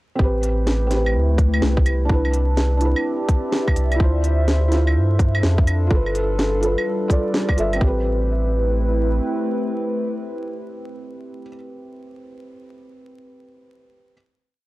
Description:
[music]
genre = future garage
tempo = 126 BPM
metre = 4/4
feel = swing 64% on 16ths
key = A minor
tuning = A4 = 439 Hz
[part]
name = felt-muted upright piano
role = accompaniment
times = 0.2-14.1 s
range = C4 to E5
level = -25 LUFS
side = right 1 dB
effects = sidechain pumping, analog delay
[part]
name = warbly tape-like pad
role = sustained chords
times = 0.8-11.7 s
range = G3 to E5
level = -27 LUFS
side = left 1 dB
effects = chorus, built-in reverb, phaser, vintage 12-bit sampler grit, sidechain pumping
[part]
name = soft dub sub bass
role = bass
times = 0.2-9.2 s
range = G1 to G2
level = -19 LUFS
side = equal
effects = sidechain pumping
[part]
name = electronic kick drum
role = drums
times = 0.2-7.9 s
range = none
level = -17 LUFS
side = equal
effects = overdrive
[part]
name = organic electronic drum kit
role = drums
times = 0.4-7.8 s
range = claves, hi-hat, snare drum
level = -24 LUFS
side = equal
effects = overdrive
[sound]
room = digital ambience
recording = dry, gritty hardware recording, transformer saturation, vinyl crackle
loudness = -17 LUFS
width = side -19 dB against mid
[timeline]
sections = 0.2-7.8 groove; 7.8-11.6 final chord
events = none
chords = 0.2 Am7; 2.1 Cmaj9; 4.0 Dm7; 5.9 G7; 7.8 Am7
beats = | 0.19 0.67 1.15 1.62 | 2.10 2.57 3.05 3.53 | 4.00 4.48 4.96 5.43 | 5.91 6.38 6.86 7.34 | 7.81 8.29 8.76 9.24 | 9.72 10.19 10.67 11.14

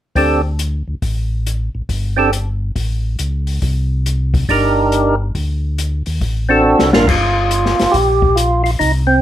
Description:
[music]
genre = soul jazz organ trio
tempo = 139 BPM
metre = 4/4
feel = swing 65% on 8ths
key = unclear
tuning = A4 = 440 Hz
[part]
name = percussive tonewheel organ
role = melody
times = 0.2-9.2 s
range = G2 to Bb4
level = -13 LUFS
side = right 1 dB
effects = slow rotary speaker, overdrive
[part]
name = mellow tonewheel organ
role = bass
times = 0.2-9.2 s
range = G1 to Eb2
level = -18 LUFS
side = equal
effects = overdrive, chorus vibrato, slow rotary speaker
[part]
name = open jazz drum kit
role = drums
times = 0.2-8.9 s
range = crash cymbal, hi-hat, kick drum, snare drum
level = -19 LUFS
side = left 2 dB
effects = none
[sound]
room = light reverb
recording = none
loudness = -14 LUFS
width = side -12 dB against mid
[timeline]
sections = 0.2-7.1 A section; 7.1-9.2 B section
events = drum fill 6.6-7.1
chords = 0.2 D7sus4; 3.6 Cm7; 5.4 D7; 7.1 Gm7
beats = | 0.15 0.59 1.02 1.46 | 1.89 2.32 2.76 3.19 | 3.62 4.06 4.49 4.92 | 5.35 5.79 6.22 6.65 | 7.08 7.51 7.94 8.37 | 8.80

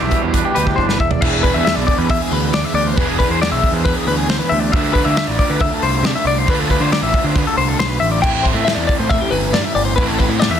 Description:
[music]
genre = math rock and midwest emo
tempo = 137 BPM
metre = 4/4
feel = straight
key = unclear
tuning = A4 = 441 Hz
[part]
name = twangy electric guitar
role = accompaniment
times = 0.0-3.0 s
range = E2 to G4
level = -23 LUFS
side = right 14 dB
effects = harmonic tremolo, plate reverb
[part]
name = clean electric guitar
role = arpeggios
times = 0.0-10.6 s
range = G4 to G5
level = -19 LUFS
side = left 5 dB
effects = tremolo, plate reverb
[part]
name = raw garage guitar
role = riff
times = 0.0-10.6 s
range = A2 to G#4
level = -21 LUFS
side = right 3 dB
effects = overdrive
[part]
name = growling picked electric bass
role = bass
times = 0.0-10.6 s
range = E1 to D3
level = -21 LUFS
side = equal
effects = overdrive
[part]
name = loose indie drum kit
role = drums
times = 0.1-10.5 s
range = crash cymbal, hi-hat, kick drum, snare drum, toms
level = -19 LUFS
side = equal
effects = none
[sound]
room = light reverb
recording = dense, heavily limited modern master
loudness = -14 LUFS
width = side -9 dB against mid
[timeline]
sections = 0.0-1.2 A section; 1.2-10.6 B section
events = drum fill 0.8-1.2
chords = 0.0 Em7; 1.2 E7; 4.7 Dmadd9; 8.2 Am7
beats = 0.33 0.77 | 1.21 1.65 2.09 2.53 | 2.97 3.41 3.85 4.29 | 4.73 5.17 5.61 6.05 | 6.48 6.92 7.36 7.80 | 8.24 8.67 9.11 9.55 | 9.98 10.42

